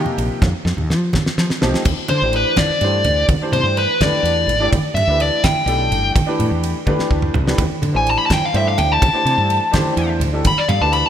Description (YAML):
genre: electric jazz fusion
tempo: 84 BPM (dotted quarters)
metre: 6/8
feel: straight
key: unclear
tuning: A4 = 441 Hz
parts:
  - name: warm baby grand piano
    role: accompaniment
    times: 0.0-11.1 s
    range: C3 to G5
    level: -23 LUFS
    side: equal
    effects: analog chorus
  - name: woody fretless electric bass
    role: bass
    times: 0.0-11.0 s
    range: G1 to F3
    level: -20 LUFS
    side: equal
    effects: none
  - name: congas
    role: percussion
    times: 0.1-11.1 s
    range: none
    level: -25 LUFS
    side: right 2 dB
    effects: none
  - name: damped 70s drum kit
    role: drums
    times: 0.2-11.0 s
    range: crash cymbal, kick drum, ride cymbal, snare drum, toms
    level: -22 LUFS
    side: equal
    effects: gated reverb
  - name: dark smooth lead guitar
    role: melody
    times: 2.1-11.1 s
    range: B4 to B5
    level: -17 LUFS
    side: left 1 dB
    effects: overdrive
room: moderate lush hall reverb, RT60 1.9 s, studio reverb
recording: bright 1980s-style digital production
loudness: -15 LUFS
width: side -9 dB against mid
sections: 0.0-1.9 A section; 1.9-11.1 A section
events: drum fill 0.4-1.9, 6.9-7.6; lead electric guitar solo 1.9-11.1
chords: 0.4 F9; 1.9 Dsus2; 3.3 Cmaj9; 4.7 G69; 6.2 Am11; 7.6 Dsus2; 9.0 Cadd9; 10.5 G69